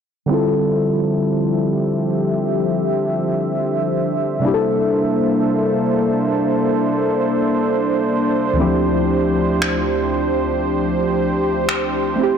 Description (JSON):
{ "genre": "contemporary R&B", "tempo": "58 BPM", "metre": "4/4", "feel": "straight", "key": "D minor", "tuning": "A4 = 440 Hz", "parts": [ { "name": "muted felt-like synth keys", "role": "accompaniment", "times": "0.3-12.4 s", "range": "D2 to A4", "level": "-19 LUFS", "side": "equal", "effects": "chorus, low-pass filter" }, { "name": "warm analog pad", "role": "sustained chords", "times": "0.3-12.4 s", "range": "F3 to E5", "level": "-19 LUFS", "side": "equal", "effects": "chorus, low-pass filter" }, { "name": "electronic finger snaps", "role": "drums", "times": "9.6-11.9 s", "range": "none", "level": "-25 LUFS", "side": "equal", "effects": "soft clipping on snare" } ], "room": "moderate plate reverb, RT60 2.6 s", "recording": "blown-out, overdriven recording, overdrive", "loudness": "-16 LUFS", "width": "side -7 dB against mid", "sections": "0.3-12.4 A section", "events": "filter sweep 0.3-12.4", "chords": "0.3 Dm11; 4.4 C13; 8.6 Dm11" }